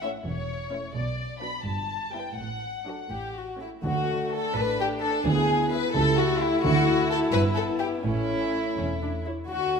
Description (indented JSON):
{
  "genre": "quick classical-period movement for symphony orchestra",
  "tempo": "85 BPM (dotted quarters)",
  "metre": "6/8",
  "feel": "straight",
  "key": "D major",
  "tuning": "A4 = 442 Hz",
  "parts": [
    { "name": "warm chamber violin section", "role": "melody", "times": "0.0-9.8 s", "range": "C#5 to B5", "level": "-36 LUFS", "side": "left 4 dB", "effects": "none" },
    { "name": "warm chamber violin section", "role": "second line", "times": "0.0-9.8 s", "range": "D4 to C#5", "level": "-27 LUFS", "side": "left 2 dB", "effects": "none" },
    { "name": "warm chamber viola section", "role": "accompaniment", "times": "0.0-9.3 s", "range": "F#3 to E4", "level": "-31 LUFS", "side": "left 1 dB", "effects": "none" },
    { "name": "dark chamber cello section", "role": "bass", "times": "0.0-9.8 s", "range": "E2 to D3", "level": "-33 LUFS", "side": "right 2 dB", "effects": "none" },
    { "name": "warm chamber double bass section", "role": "bass", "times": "0.0-9.8 s", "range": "E1 to D2", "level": "-32 LUFS", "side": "right 3 dB", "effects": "none" },
    { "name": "mellow French horn section", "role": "sustained chords", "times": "3.8-9.8 s", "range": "A3 to G4", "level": "-32 LUFS", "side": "equal", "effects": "none" },
    { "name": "timpani", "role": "percussion", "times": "3.8-7.3 s", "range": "D3", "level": "-31 LUFS", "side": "right 3 dB", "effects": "none" }
  ],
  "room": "wet scoring stage reverb, RT60 1.4 s",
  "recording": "minimal, uncompressed stereo recording",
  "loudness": "-24 LUFS",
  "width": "side -6 dB against mid",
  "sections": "0.0-3.8 A section; 3.8-9.8 B section",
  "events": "none",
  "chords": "0.0 A; 1.0 Bm; 1.7 Em/G; 2.4 D/A; 3.1 A; 3.8 D; 5.3 E7/D; 6.0 A7/C#; 6.6 D; 7.3 Em/G; 8.1 A"
}